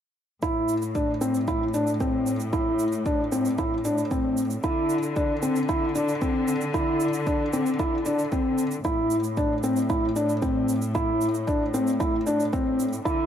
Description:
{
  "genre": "piano and strings electronica",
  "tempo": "114 BPM",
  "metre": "4/4",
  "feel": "straight",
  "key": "A minor",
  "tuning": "A4 = 440 Hz",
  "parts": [
    { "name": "felt-muted upright piano", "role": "riff", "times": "0.4-13.3 s", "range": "C4 to E4", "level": "-24 LUFS", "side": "equal", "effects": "tape echo" },
    { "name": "rich studio cello section", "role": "bass", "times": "0.4-13.3 s", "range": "A2 to D3", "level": "-30 LUFS", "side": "left 1 dB", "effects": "sidechain pumping" },
    { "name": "electronic kick drum", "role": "drums", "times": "0.4-13.2 s", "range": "none", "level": "-30 LUFS", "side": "right 1 dB", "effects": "overdrive" },
    { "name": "shaker", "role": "drums", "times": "0.4-13.2 s", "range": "none", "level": "-40 LUFS", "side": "right 8 dB", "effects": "none" }
  ],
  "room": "light reverb, studio ambience",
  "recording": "none",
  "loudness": "-22 LUFS",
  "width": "side -9 dB against mid",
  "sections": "0.4-13.3 A section",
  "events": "none",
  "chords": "0.4 Am; 4.6 Cadd9/D; 8.8 Am",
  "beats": "| 0.42 0.95 1.48 2.00 | 2.53 3.06 3.58 4.11 | 4.64 5.16 5.69 6.21 | 6.74 7.27 7.79 8.32 | 8.85 9.37 9.90 10.43 | 10.95 11.48 12.00 12.53 | 13.06"
}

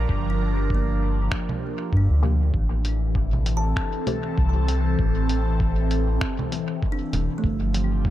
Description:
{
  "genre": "ambient dub",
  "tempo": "98 BPM",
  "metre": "4/4",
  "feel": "swing 57% on 16ths",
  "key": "unclear",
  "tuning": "A4 = 440 Hz",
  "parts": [
    { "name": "airy breathy pad", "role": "sustained chords", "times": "0.0-8.1 s", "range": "E3 to Bb4", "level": "-28 LUFS", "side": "left 1 dB", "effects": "chorus, phaser" },
    { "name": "filtered dub chord stab", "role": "stabs", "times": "0.0-7.4 s", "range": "A3 to G4", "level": "-37 LUFS", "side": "left 4 dB", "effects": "phaser, analog chorus, dub echo" },
    { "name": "round analog bass", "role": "bass", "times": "0.0-8.1 s", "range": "E1 to G2", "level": "-22 LUFS", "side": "equal", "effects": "tube saturation" },
    { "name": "electronic kick drum", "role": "drums", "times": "0.1-8.1 s", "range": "none", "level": "-26 LUFS", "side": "equal", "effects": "none" },
    { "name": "kalimba", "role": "arpeggios", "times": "0.3-8.1 s", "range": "A3 to A5", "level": "-34 LUFS", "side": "right 3 dB", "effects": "analog delay" },
    { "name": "lo-fi sampler-style drum kit", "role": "drums", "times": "1.3-7.9 s", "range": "congas, finger snaps, hi-hat", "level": "-32 LUFS", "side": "right 2 dB", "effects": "dub echo" }
  ],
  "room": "little or no reverb",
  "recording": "echo-heavy mix",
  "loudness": "-21 LUFS",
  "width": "side -13 dB against mid",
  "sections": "0.0-8.1 A section",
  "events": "none",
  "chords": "0.0 Gm7; 2.5 Am7; 7.4 G7(no3)",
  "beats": "| 0.09 0.70 1.32 1.93 | 2.54 3.15 3.77 4.38 | 4.99 5.60 6.21 6.83 | 7.44 8.05"
}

